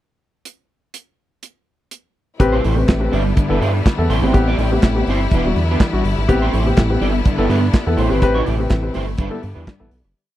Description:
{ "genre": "disco", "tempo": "124 BPM", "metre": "4/4", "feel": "straight", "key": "A minor", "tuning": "A4 = 439 Hz", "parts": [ { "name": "modern studio drum kit", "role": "drums", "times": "0.5-10.0 s", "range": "handclaps, hi-hat, kick drum, snare drum", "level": "-15 LUFS", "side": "equal", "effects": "none" }, { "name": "dark concert grand piano", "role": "accompaniment", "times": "2.4-10.0 s", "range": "G2 to B4", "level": "-20 LUFS", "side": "left 2 dB", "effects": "none" }, { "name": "electric guitar at the edge of break-up", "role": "accompaniment", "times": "2.4-10.1 s", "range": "G3 to D5", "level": "-23 LUFS", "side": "right 3 dB", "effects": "ensemble chorus" }, { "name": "clear studio string section", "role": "sustained chords", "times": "2.4-10.2 s", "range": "C3 to E4", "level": "-25 LUFS", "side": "left 2 dB", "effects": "none" }, { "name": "round analog bass", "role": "bass", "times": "2.4-10.1 s", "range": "E1 to G2", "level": "-20 LUFS", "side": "equal", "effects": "none" } ], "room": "little or no reverb", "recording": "dry, close 1970s-style studio recording", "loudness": "-14 LUFS", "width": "side -14 dB against mid", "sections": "0.5-2.4 pickup bar; 2.4-10.2 verse", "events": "fade-out 8.2-10.2", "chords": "0.5 N.C.; 2.4 Am7; 3.1 G6; 4.1 Am7; 5.3 Em7; 6.3 Am7; 7.0 G6; 8.0 Am7; 9.2 G6" }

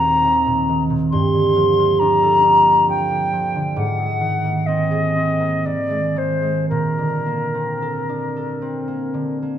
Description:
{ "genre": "classical, impressionist duo for flute and harp", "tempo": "54-70 BPM", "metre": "3/4", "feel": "rubato", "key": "Bb major", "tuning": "A4 = 445 Hz", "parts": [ { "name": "silver concert flute", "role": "melody", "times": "0.0-9.4 s", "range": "Bb4 to C6", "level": "-18 LUFS", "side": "left 2 dB", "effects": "none" }, { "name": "concert harp", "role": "accompaniment", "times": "0.0-9.6 s", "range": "Eb2 to Bb4", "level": "-20 LUFS", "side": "right 2 dB", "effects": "none" } ], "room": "moderate scoring stage reverb, RT60 1.6 s", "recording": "minimal, uncompressed stereo recording", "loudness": "-16 LUFS", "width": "side -10 dB against mid", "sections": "0.0-9.6 A section", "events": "none", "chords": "0.0 Ebm6; 1.1 Gm11; 3.8 Ab9; 6.7 Bbmaj9" }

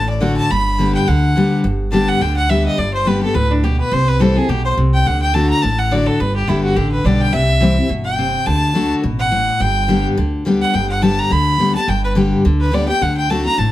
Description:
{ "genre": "bluegrass", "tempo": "211 BPM", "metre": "4/4", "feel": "swing 55% on 8ths", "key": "G major", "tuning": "A4 = 440 Hz", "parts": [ { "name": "clear fiddle", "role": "melody", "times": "0.0-13.7 s", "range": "D4 to B5", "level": "-19 LUFS", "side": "equal", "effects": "plate reverb" }, { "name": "picked steel-string acoustic guitar", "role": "accompaniment", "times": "0.0-13.7 s", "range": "G2 to G4", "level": "-17 LUFS", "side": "left 2 dB", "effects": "none" }, { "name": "upright bass", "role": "bass", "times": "0.0-13.7 s", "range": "G1 to D2", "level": "-19 LUFS", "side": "right 1 dB", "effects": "none" } ], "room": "moderate studio reverb, RT60 0.6 s", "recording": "none", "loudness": "-14 LUFS", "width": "side -14 dB against mid", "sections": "0.0-1.6 A section; 1.6-10.7 B section; 10.7-13.7 B section", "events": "fiddle solo 1.6-13.7", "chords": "0.0 D; 0.5 G; 3.9 C; 5.1 D; 6.2 G; 7.3 C; 8.5 D; 9.6 G; 13.0 D" }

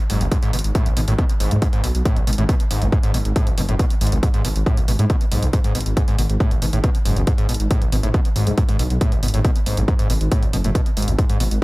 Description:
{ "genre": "driving peak-time techno", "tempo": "138 BPM", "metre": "4/4", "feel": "straight", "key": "unclear", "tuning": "A4 = 440 Hz", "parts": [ { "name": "screaming distorted acid line", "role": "riff", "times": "0.1-11.4 s", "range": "G#1 to B2", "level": "-24 LUFS", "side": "equal", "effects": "distortion, wide subtle chorus, sidechain pumping, analog delay" }, { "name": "dark detuned saw bass", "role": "bass", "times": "0.1-11.6 s", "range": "F#1 to G#2", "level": "-20 LUFS", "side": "equal", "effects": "sidechain pumping" }, { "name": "electronic hi-hat", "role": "drums", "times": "0.1-11.6 s", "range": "none", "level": "-30 LUFS", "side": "right 1 dB", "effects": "overdrive, sidechain pumping on hats, sidechain pumping on cymbals" }, { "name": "electronic kick drum", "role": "drums", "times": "0.3-11.3 s", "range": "none", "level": "-19 LUFS", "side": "equal", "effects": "none" } ], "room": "little or no reverb", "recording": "echo-heavy mix", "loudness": "-16 LUFS", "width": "side -21 dB against mid", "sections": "0.0-11.6 A section", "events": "none", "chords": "0.0 G#m" }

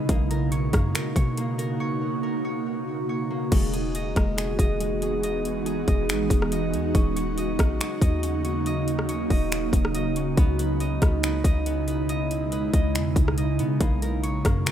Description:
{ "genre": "hip hop, atmospheric cloud-rap", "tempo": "140 BPM", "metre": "4/4", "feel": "half-time", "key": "E lydian", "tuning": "A4 = 440 Hz", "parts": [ { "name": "ethereal airy pad", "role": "sustained chords", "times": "0.0-14.7 s", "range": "B2 to F#4", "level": "-27 LUFS", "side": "right 2 dB", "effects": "ensemble chorus, built-in reverb, sidechain pumping" }, { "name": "concert harp", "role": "arpeggios", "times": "0.0-14.7 s", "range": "G#3 to D#5", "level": "-32 LUFS", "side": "equal", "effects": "digital delay" }, { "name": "clean 808-style bass", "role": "bass", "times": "0.0-14.7 s", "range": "D#1 to C#3", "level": "-28 LUFS", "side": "equal", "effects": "none" }, { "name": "trap drum kit", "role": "drums", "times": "0.1-14.7 s", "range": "crash cymbal, finger snaps, hi-hat, kick drum, rim click", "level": "-24 LUFS", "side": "equal", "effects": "none" } ], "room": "digital ambience", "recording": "rough home demo mix", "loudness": "-22 LUFS", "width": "side -10 dB against mid", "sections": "0.0-3.5 A section; 3.5-14.7 A section", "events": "break 1.8-3.5", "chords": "0.1 Bmaj9; 3.5 Emaj9; 6.9 D#m7; 10.4 C#m9; 13.8 Bmaj9" }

